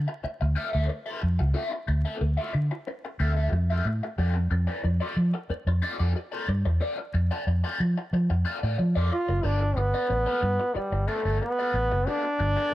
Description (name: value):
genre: funk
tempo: 91 BPM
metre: 4/4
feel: straight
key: unclear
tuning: A4 = 440 Hz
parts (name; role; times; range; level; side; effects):
- vintage muted fingered electric bass; bass; 0.0-12.5 s; F#1 to F3; -24 LUFS; equal; none
- raw garage guitar; accompaniment; 0.1-12.7 s; B3 to E5; -33 LUFS; left 2 dB; wah, overdrive, phaser
- bright trombone; melody; 9.1-12.7 s; G3 to F4; -26 LUFS; right 1 dB; none
room: light reverb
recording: dark, warm production, vinyl crackle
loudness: -24 LUFS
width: side -15 dB against mid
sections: 0.0-9.4 A section; 9.4-12.7 B section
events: none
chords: 0.0 Dm9; 4.2 F6; 9.4 G9